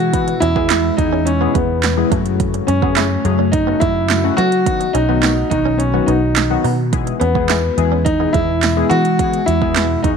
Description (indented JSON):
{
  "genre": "dance-pop",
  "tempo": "106 BPM",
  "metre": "4/4",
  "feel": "straight",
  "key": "E major",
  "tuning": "A4 = 440 Hz",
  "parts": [
    { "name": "warm concert grand piano", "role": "melody", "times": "0.0-10.1 s", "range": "B3 to F#4", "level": "-18 LUFS", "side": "equal", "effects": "tape echo" },
    { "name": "glassy FM pad", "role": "sustained chords", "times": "0.0-10.2 s", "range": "B2 to F#4", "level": "-24 LUFS", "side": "right 1 dB", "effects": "ensemble chorus, built-in reverb, sidechain pumping" },
    { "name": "vintage muted picked electric bass", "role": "bass", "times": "0.0-10.2 s", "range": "B1 to F#3", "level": "-20 LUFS", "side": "equal", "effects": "sidechain pumping" },
    { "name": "chorused polysynth", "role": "accompaniment", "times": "0.1-10.2 s", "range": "C#3 to B4", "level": "-22 LUFS", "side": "left 13 dB", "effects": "sidechain pumping" },
    { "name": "deep house drum kit", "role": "drums", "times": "0.1-10.2 s", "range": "handclaps, hi-hat, kick drum, snare drum", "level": "-20 LUFS", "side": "right 5 dB", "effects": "overdrive" },
    { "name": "direct-recorded clean electric guitar", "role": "riff", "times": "0.3-9.0 s", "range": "G#3 to E4", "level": "-25 LUFS", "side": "right 15 dB", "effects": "ensemble chorus" },
    { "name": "tambourine", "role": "percussion", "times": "0.7-8.8 s", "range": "none", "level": "-34 LUFS", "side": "right 17 dB", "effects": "none" }
  ],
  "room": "light reverb, digital ambience",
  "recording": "1960s-style stereo with parts hard left and right",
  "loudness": "-13 LUFS",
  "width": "side -6 dB against mid",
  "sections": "0.0-10.2 A section",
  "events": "kick muted 5.8-6.9",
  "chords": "0.0 E; 2.1 F#m; 4.7 B; 6.9 E"
}